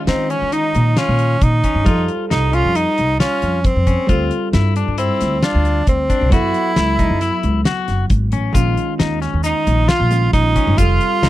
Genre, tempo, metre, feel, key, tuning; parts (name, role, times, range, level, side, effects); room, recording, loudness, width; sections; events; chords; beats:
progressive instrumental, band music in an uneven meter; 135 BPM; 5/4; straight; A4 = 441 Hz
vintage hollow-body jazz guitar; accompaniment; 0.0-11.3 s; Eb3 to C5; -25 LUFS; right 1 dB
bright tenor saxophone; melody; 0.1-11.3 s; C4 to F4; -18 LUFS; right 2 dB
clean electric guitar; arpeggios; 0.1-11.3 s; Db4 to Gb4; -24 LUFS; left 8 dB
upright bass; bass; 0.1-11.3 s; F1 to Eb3; -18 LUFS; equal
damped 70s drum kit; drums; 0.1-11.3 s; hi-hat, kick drum, snare drum; -18 LUFS; equal
tube shaker; percussion; 8.6-11.0 s; -33 LUFS; right 9 dB
small room ambience; dry, close 1970s-style studio recording; -14 LUFS; side -15 dB against mid
0.0-11.3 A section
tenor saxophone solo 0.0-11.3
0.0 Bbm; 1.9 F; 4.1 Dm7; 6.3 Gbm; 8.6 Bbm; 10.8 F
0.08 0.53 0.97 1.42 | 1.86 2.31 2.76 3.20 3.65 | 4.10 4.54 4.99 5.43 5.88 | 6.33 6.77 7.22 7.66 8.11 | 8.55 9.00 9.45 9.89 10.34 | 10.78 11.23